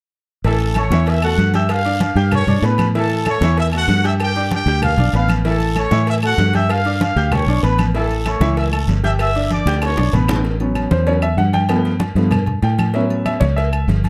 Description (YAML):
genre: latin, salsa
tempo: 192 BPM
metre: 4/4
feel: straight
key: unclear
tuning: A4 = 441 Hz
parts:
  - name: fingered electric bass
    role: bass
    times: 0.4-14.1 s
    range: G1 to A2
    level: -20 LUFS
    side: equal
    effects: none
  - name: congas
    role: percussion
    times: 0.4-14.1 s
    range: none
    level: -25 LUFS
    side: equal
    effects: none
  - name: cowbell and bongos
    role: percussion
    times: 0.4-14.1 s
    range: none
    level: -32 LUFS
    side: equal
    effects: none
  - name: guiro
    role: percussion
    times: 0.4-10.4 s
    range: none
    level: -39 LUFS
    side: equal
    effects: none
  - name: mellow trumpet section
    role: melody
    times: 0.5-10.4 s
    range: F#4 to E6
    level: -24 LUFS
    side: equal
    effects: none
  - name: clear grand piano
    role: accompaniment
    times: 0.5-13.9 s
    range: E3 to G6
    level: -24 LUFS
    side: equal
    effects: none
  - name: agogo bells and timbales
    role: percussion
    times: 0.6-14.1 s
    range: none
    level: -31 LUFS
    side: equal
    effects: none
  - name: claves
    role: percussion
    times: 0.8-13.9 s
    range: none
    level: -33 LUFS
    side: equal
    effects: none
room: light reverb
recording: close, detailed microphones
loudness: -17 LUFS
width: mono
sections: 0.4-10.4 A section; 10.4-14.1 B section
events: drum fill 9.5-10.4; grand piano solo 10.4-14.1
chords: 0.4 A6; 1.7 G7; 2.9 A6; 4.2 G7; 5.4 A6; 6.7 G7; 7.9 A; 9.2 G; 10.4 A6; 11.7 G7; 12.9 A6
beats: | 0.45 0.76 1.07 1.39 | 1.70 2.01 2.32 2.63 | 2.95 3.26 3.57 3.88 | 4.20 4.51 4.82 5.13 | 5.45 5.76 6.07 6.38 | 6.70 7.01 7.32 7.63 | 7.95 8.26 8.57 8.88 | 9.20 9.51 9.82 10.13 | 10.45 10.76 11.07 11.38 | 11.70 12.01 12.32 12.64 | 12.95 13.26 13.57 13.89